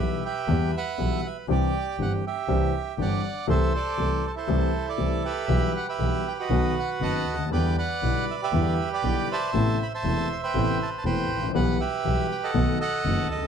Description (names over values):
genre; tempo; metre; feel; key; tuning
tango; 119 BPM; 4/4; rubato; E minor; A4 = 440 Hz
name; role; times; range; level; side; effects
bandoneon; melody; 0.0-13.5 s; E4 to C6; -28 LUFS; right 4 dB; plate reverb
warm grand piano; accompaniment; 0.0-13.5 s; E1 to A4; -27 LUFS; left 4 dB; none
dark double bass; bass; 0.0-13.5 s; E1 to E2; -27 LUFS; right 1 dB; none
room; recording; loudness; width
light reverb; dark, warm production; -23 LUFS; side -7 dB against mid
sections
0.0-13.5 A section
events
none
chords
0.0 Em; 1.5 Cadd9; 3.5 Am/C; 5.5 Em/B; 6.5 B; 7.5 Em7; 9.5 Amadd9; 11.5 Em/B; 12.5 B7